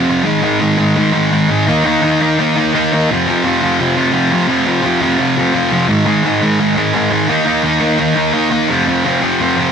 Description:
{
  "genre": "rock",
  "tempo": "171 BPM",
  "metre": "4/4",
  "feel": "straight",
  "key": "F minor",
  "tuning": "A4 = 441 Hz",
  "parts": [
    { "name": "thick fuzz guitar", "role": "solo", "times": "0.0-9.7 s", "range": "F2 to Eb4", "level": "-11 LUFS", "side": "equal", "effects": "distortion" }
  ],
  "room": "moderate studio ambience, RT60 0.5 s",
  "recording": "band playing live in one room",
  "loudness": "-11 LUFS",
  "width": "side -7 dB against mid",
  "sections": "0.3-9.7 A section",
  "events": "none",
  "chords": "0.3 Ab5; 1.7 Eb5; 3.1 F5; 5.9 Ab5; 7.3 Eb5; 8.7 F5"
}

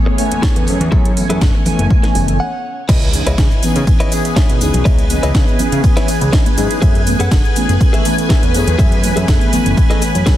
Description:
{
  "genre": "filtered disco house",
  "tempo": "122 BPM",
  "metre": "4/4",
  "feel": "swing 53% on 16ths",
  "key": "C# minor",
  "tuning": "A4 = 439 Hz",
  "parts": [
    { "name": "mellow synth brass", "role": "accompaniment", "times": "0.0-10.4 s", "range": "E3 to G#5", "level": "-19 LUFS", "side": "equal", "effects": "chorus, phaser, sidechain pumping, low-pass filter" },
    { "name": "string machine, full ensemble", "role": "sustained chords", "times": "0.0-10.4 s", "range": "C#4 to G#5", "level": "-24 LUFS", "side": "equal", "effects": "phaser, ensemble chorus, vintage 12-bit sampler grit, sidechain pumping, low-pass filter" },
    { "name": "direct-recorded clean electric guitar", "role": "riff", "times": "0.1-10.4 s", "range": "E4 to F#5", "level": "-24 LUFS", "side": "left 2 dB", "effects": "sidechain pumping, low-pass filter" },
    { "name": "house drum kit", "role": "drums", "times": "0.2-10.4 s", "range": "crash cymbal, hi-hat, ride cymbal, shaker, snare drum", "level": "-23 LUFS", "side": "right 1 dB", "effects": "studio reverb" },
    { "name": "tambourine and congas", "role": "percussion", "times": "0.2-10.4 s", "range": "none", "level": "-27 LUFS", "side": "left 2 dB", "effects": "sidechain pumping on perc, low-pass filter on perc" },
    { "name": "electronic kick drum", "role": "drums", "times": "0.4-10.4 s", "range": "none", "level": "-14 LUFS", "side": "equal", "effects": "studio reverb" },
    { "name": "fat analog bass", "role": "bass", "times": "0.6-10.4 s", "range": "F#1 to C#3", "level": "-17 LUFS", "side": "equal", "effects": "sidechain pumping, low-pass filter" },
    { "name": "impact", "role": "sound effects", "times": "2.9-4.9 s", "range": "none", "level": "-25 LUFS", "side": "equal", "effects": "none" }
  ],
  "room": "little or no reverb",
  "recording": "dense, heavily limited modern master",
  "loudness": "-11 LUFS",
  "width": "side -13 dB against mid",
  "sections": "0.0-2.9 A section; 2.9-10.4 B section",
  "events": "filter sweep 0.0-2.9; clean electric guitar fill 2.1-2.9; stop 2.4-2.9; drop 2.9-10.4; impact 2.9-4.9",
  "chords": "0.0 F#m11; 2.9 C#m9; 6.8 F#m11"
}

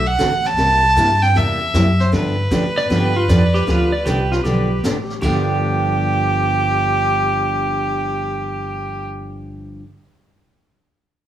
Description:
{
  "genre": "country, western swing",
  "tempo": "155 BPM",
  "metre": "4/4",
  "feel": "swing 66% on 8ths",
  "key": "G mixolydian",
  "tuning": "A4 = 439 Hz",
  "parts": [
    { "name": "rich fiddle", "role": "melody", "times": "0.0-9.1 s", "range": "G4 to A5", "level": "-19 LUFS", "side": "right 1 dB", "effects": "none" },
    { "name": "picked steel-string acoustic guitar", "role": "accompaniment", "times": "0.0-9.8 s", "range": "G2 to A4", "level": "-23 LUFS", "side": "right 2 dB", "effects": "none" },
    { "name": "upright bass", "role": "bass", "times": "0.0-9.8 s", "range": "G1 to A2", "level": "-20 LUFS", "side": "equal", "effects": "none" },
    { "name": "jazz brush drum kit", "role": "drums", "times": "0.2-5.5 s", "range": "brushed snare drum, crash cymbal, hi-hat, kick drum, snare drum", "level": "-29 LUFS", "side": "left 1 dB", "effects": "none" },
    { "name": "pedal steel guitar", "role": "second line", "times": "2.8-9.1 s", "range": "F4 to D5", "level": "-24 LUFS", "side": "equal", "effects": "none" }
  ],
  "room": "light reverb",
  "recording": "small room ambience",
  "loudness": "-15 LUFS",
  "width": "side -11 dB against mid",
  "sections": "0.0-5.2 A section; 5.2-8.3 B section",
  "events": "none",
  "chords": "0.0 D7; 0.6 C7; 2.1 G7"
}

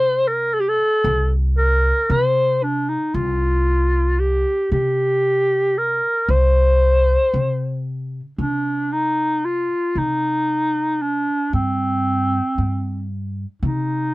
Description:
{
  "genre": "Turkish makam ensemble",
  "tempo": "114 BPM (eighths)",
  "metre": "10/8",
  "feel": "straight",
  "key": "C makam huseyni",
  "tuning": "A4 = 440 Hz",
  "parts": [
    { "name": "warm clarinet", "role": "melody", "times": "0.0-14.1 s", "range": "C4 to C5", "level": "-18 LUFS", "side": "equal", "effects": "none" },
    { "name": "upright bass", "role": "bass", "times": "0.0-14.1 s", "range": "C2 to C3", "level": "-21 LUFS", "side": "equal", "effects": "none" }
  ],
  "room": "little or no reverb",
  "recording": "dry, close 1970s-style studio recording",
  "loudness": "-17 LUFS",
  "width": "side -19 dB against mid",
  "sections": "0.0-8.4 A section; 8.4-14.1 B section",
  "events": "none",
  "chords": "none"
}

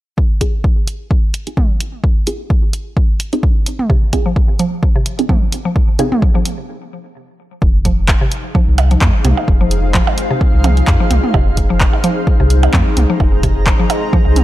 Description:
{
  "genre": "minimal techno",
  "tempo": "129 BPM",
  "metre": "4/4",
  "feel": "swing 55% on 16ths",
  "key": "F minor",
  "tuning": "A4 = 440 Hz",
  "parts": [
    { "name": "electronic kick drum", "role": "drums", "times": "0.2-14.2 s", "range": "none", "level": "-14 LUFS", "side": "equal", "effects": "overdrive" },
    { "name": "filtered dub chord stab", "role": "stabs", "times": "0.4-6.1 s", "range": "C4 to Ab4", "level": "-22 LUFS", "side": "right 2 dB", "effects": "phaser, wide subtle chorus, tape echo" },
    { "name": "punchy analog drum machine", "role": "drums", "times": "0.4-14.4 s", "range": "handclaps, hi-hat", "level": "-21 LUFS", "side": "equal", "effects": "overdrive" },
    { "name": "electronic toms and percussion blips", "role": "percussion", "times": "1.6-14.4 s", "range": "none", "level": "-21 LUFS", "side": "right 3 dB", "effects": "tape echo" },
    { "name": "mallet-like synth pluck", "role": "riff", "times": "3.9-14.2 s", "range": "C3 to F3", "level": "-21 LUFS", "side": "equal", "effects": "chorus, sidechain pumping, tape echo" },
    { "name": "saturated sub bass", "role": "bass", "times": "7.6-14.4 s", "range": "F1 to F2", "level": "-14 LUFS", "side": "equal", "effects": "sidechain pumping" },
    { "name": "granular cloud pad", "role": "texture", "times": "8.4-14.4 s", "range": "Eb4 to Bb5", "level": "-20 LUFS", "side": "left 1 dB", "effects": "built-in reverb, sidechain pumping" }
  ],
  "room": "digital ambience",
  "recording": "dark, warm production",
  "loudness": "-12 LUFS",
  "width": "side -15 dB against mid",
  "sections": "0.2-7.6 A section; 7.6-14.4 B section",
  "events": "filter sweep on synth stab 0.2-7.6; break 6.7-7.6",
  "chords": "0.2 Fm7"
}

